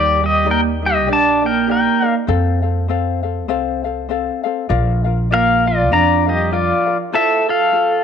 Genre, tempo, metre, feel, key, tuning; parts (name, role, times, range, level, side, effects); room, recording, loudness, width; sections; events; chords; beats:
Hawaiian; 99 BPM; 4/4; swing 58% on 8ths; Bb major; A4 = 440 Hz
pedal steel guitar; melody; 0.0-8.0 s; F4 to Bb5; -15 LUFS; left 2 dB
vibraphone with soft mallets; second line; 0.0-8.0 s; F3 to A4; -21 LUFS; right 14 dB
ukulele; accompaniment; 0.0-8.0 s; C4 to F5; -23 LUFS; left 11 dB
upright bass; bass; 0.0-6.7 s; Bb1 to F2; -20 LUFS; right 1 dB
light reverb, small room ambience; 1960s-style stereo with parts hard left and right; -14 LUFS; side -7 dB against mid
0.0-7.1 A section
0.0 Ebmaj7; 2.3 F; 4.7 Bb; 7.1 Fmaj7
0.47 1.08 1.68 | 2.29 2.89 3.50 4.10 | 4.70 5.31 5.91 6.52 | 7.12 7.73